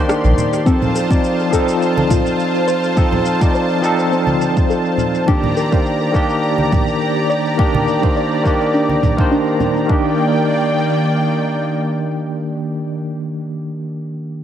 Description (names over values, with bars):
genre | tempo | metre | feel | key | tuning
sunset chillout | 104 BPM | 4/4 | swing 54% on 16ths | Eb lydian | A4 = 438 Hz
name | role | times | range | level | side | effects
barky tine electric piano | accompaniment | 0.0-14.4 s | Eb3 to D5 | -18 LUFS | equal | medium stereo tremolo, auto-pan, dub echo
lush unison pad | sustained chords | 0.0-12.9 s | Eb3 to C6 | -20 LUFS | equal | chorus
soft round pluck | arpeggios | 0.1-10.2 s | C4 to D5 | -24 LUFS | left 1 dB | none
electronic rim click and shaker | drums | 0.1-9.9 s | none | -30 LUFS | equal | overdrive, low-pass filter on perc, low-pass filter on snare, dub echo
congas | percussion | 0.4-9.7 s | none | -22 LUFS | right 3 dB | none
electronic kick drum | drums | 0.7-10.0 s | none | -17 LUFS | equal | overdrive
room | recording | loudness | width
moderate spring reverb, RT60 1.4 s | echo-heavy mix | -14 LUFS | side -10 dB against mid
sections
0.0-9.9 A section; 9.9-12.2 B section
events
filter sweep on drum 0.0-9.9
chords
0.0 Ebmaj7; 0.7 F7; 5.3 Ebmaj7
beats
0.08 | 0.66 1.24 1.81 2.39 | 2.97 3.55 4.12 4.70 | 5.28 5.85 6.43 7.01 | 7.58 8.16 8.74 9.31 | 9.89 10.47 11.05 11.62